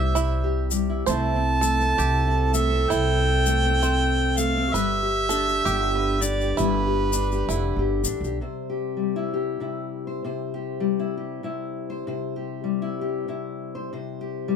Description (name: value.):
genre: acoustic folk duo or small band.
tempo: 65 BPM.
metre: 4/4.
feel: swing 60% on 8ths.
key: C major.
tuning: A4 = 439 Hz.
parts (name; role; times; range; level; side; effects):
warm harmonica; melody; 0.0-8.0 s; B4 to A5; -25 LUFS; right 2 dB; none.
warm clarinet; second line; 0.0-8.0 s; F#4 to C5; -31 LUFS; right 6 dB; none.
fingerpicked steel-string acoustic guitar; accompaniment; 0.0-14.6 s; C3 to C5; -27 LUFS; left 4 dB; none.
bluegrass banjo; arpeggios; 0.0-8.4 s; C4 to C5; -31 LUFS; right 8 dB; none.
upright bass; bass; 0.0-8.4 s; F1 to C2; -25 LUFS; equal; none.
tube shaker; percussion; 0.2-8.3 s; none; -30 LUFS; left 6 dB; none.
room: little or no reverb.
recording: close, detailed microphones.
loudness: -22 LUFS.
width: side -7 dB against mid.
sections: 0.0-8.4 A section; 8.4-14.6 B section.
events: none.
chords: 0.0 C; 4.7 G; 8.4 C.